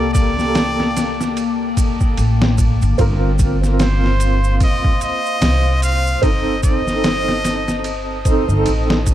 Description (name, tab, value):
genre	trip hop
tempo	74 BPM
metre	4/4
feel	swing 59% on 16ths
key	G minor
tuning	A4 = 440 Hz
part	trumpet with straight mute	melody	0.0-8.2 s	C5 to F5	-24 LUFS	equal	dub echo
part	felt-muted upright piano	accompaniment	0.0-9.1 s	Bb3 to Bb4	-22 LUFS	right 2 dB	tremolo, vintage 12-bit sampler grit
part	warbly tape-like pad	sustained chords	0.0-9.1 s	Bb3 to Eb6	-24 LUFS	left 3 dB	chorus, built-in reverb, vintage 12-bit sampler grit
part	upright bass	bass	0.0-9.1 s	G1 to C2	-18 LUFS	equal	none
part	trip hop sampler-style drum kit	drums	0.1-9.1 s	kick drum, ride cymbal, snare drum	-19 LUFS	equal	overdrive, small room ambience
part	maracas	percussion	0.1-9.1 s	none	-31 LUFS	right 6 dB	none
room	little or no reverb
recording	dark, warm production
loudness	-14 LUFS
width	side -12 dB against mid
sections	0.0-9.1 A section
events	none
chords	0.0 Gmadd9; 3.0 Fsus4/G; 6.2 Adim/G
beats	0.56 1.37 2.18 | 2.99 3.80 4.61 5.42 | 6.23 7.04 7.85 8.66